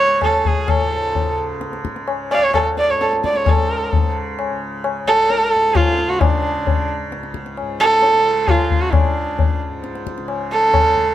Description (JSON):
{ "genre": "indian classical, Hindustani", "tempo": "131 BPM", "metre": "3/4", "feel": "straight", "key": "unclear", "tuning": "A4 = 440 Hz", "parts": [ { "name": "rich sarangi", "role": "melody", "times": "0.0-11.1 s", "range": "D4 to E#5", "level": "-16 LUFS", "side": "right 2 dB", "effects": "plate reverb" }, { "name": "tanpura", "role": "drone", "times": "0.0-11.1 s", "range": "C#2 to C#3", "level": "-29 LUFS", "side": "right 1 dB", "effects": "none" }, { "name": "tabla", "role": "percussion", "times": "0.2-11.1 s", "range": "none", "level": "-19 LUFS", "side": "left 4 dB", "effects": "none" } ], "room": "light reverb", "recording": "none", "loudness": "-15 LUFS", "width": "side -12 dB against mid", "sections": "0.0-3.5 A section; 3.5-11.1 B section", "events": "speeding up 0.0-11.1", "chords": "none" }